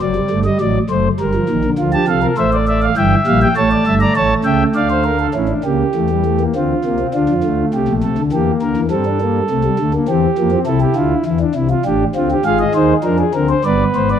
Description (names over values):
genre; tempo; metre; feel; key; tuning
classical, baroque-style 4-part fugue for pipe organ; 101 BPM; 3/4; straight; unclear; A4 = 441 Hz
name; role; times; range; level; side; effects
pipe organ, principal; solo; 0.0-14.2 s; F#1 to Bb5; -13 LUFS; equal; none
room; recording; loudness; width
moderate scoring stage reverb, RT60 1.7 s; none; -13 LUFS; side -9 dB against mid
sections
0.0-5.3 A section; 5.3-14.2 B section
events
none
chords
0.0 D7/F#; 1.2 Gm; 1.8 Dm; 3.0 Edim/G; 3.6 A7; 4.7 Dm; 5.3 A; 6.6 Dm; 8.3 Edim; 8.9 Gm; 10.1 Edim; 10.7 Am/C (rootless); 11.9 F/A; 12.5 Ab; 13.0 Ddim/F; 13.7 G